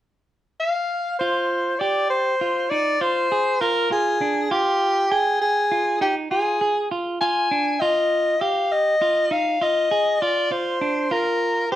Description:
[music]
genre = progressive instrumental, progressive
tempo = 200 BPM (eighths)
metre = 11/8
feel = straight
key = F dorian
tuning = A4 = 440 Hz
[part]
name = warm soprano saxophone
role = melody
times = 0.6-11.8 s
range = G4 to Ab5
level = -20 LUFS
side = left 1 dB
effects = plate reverb
[part]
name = clean electric guitar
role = arpeggios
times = 1.2-11.8 s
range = D4 to G5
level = -25 LUFS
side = right 3 dB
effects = plate reverb
[sound]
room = wet studio reverb, RT60 0.8 s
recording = none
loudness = -19 LUFS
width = side -13 dB against mid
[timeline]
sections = 0.0-1.2 A section; 1.2-11.8 B section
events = none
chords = 0.0 N.C.; 1.2 Fm

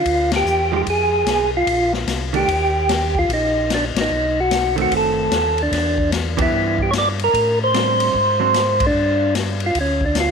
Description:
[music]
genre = soul jazz organ trio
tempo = 148 BPM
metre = 4/4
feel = swing 64% on 8ths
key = unclear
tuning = A4 = 440 Hz
[part]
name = percussive tonewheel organ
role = melody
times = 0.0-10.3 s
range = C#4 to D5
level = -18 LUFS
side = right 1 dB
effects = slow rotary speaker
[part]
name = mellow tonewheel organ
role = bass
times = 0.0-10.3 s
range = F#1 to A2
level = -24 LUFS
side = equal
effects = slow rotary speaker
[part]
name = swinging big-band drum kit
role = drums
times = 0.1-10.3 s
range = hi-hat, kick drum, ride cymbal, snare drum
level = -24 LUFS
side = left 5 dB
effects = none
[part]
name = vintage hollow-body jazz guitar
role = accompaniment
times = 0.7-8.5 s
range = Eb3 to G4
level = -26 LUFS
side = right 12 dB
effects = none
[sound]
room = light reverb, small room ambience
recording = 1960s-style stereo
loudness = -16 LUFS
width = side -6 dB against mid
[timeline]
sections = 0.0-10.3 A section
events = band accent 0.3, 3.9, 6.3, 8.7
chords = 0.0 G5; 0.9 Fm; 1.7 Bbadd9; 2.5 Eb; 4.1 B7b9; 5.7 Em7; 7.3 Am7; 8.1 Ab7#11; 8.9 G5

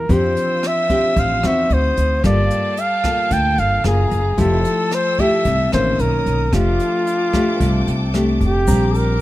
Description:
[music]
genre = bossa nova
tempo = 112 BPM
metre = 4/4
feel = straight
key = F major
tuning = A4 = 440 Hz
[part]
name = warm flugelhorn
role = melody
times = 0.0-9.2 s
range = F4 to G5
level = -19 LUFS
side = equal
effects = none
[part]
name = nylon-string guitar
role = accompaniment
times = 0.0-9.2 s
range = Bb2 to A4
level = -21 LUFS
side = left 2 dB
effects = none
[part]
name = upright bass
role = bass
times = 0.0-9.2 s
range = F1 to F2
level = -19 LUFS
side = equal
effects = none
[part]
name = warm studio string section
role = sustained chords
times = 0.1-9.2 s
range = F4 to E6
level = -29 LUFS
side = right 1 dB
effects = none
[part]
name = jazz brush drum kit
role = drums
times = 0.1-9.1 s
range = hi-hat, kick drum, rim click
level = -25 LUFS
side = equal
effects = none
[part]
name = bell-like tine electric piano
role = accompaniment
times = 8.7-9.2 s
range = Bb5 to D6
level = -29 LUFS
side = right 1 dB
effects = medium stereo tremolo
[part]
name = tube shaker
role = percussion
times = 8.7-9.2 s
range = none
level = -34 LUFS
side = right 7 dB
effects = none
[sound]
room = light reverb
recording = none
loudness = -15 LUFS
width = side -16 dB against mid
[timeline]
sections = 0.0-8.7 A section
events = none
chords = 0.1 Dm11/F; 1.7 D7b9; 2.2 Gm9; 3.8 Gbmaj9; 4.4 Fmaj9; 6.0 Bmaj9; 6.5 F69; 8.7 Bb69

